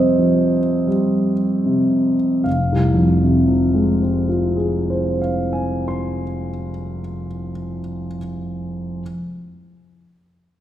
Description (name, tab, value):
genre	classical, impressionist solo piano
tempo	35-48 BPM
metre	3/4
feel	rubato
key	F minor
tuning	A4 = 441 Hz
part	clear concert grand piano	solo	0.0-9.0 s	F1 to C6	-17 LUFS	equal	none
room	wet recital hall reverb, RT60 1.7 s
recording	heard from further back in the room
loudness	-17 LUFS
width	side -12 dB against mid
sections	0.0-2.5 A section; 2.5-6.7 B section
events	slowing down 0.0-2.5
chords	0.0 Eb69/F; 2.5 Fm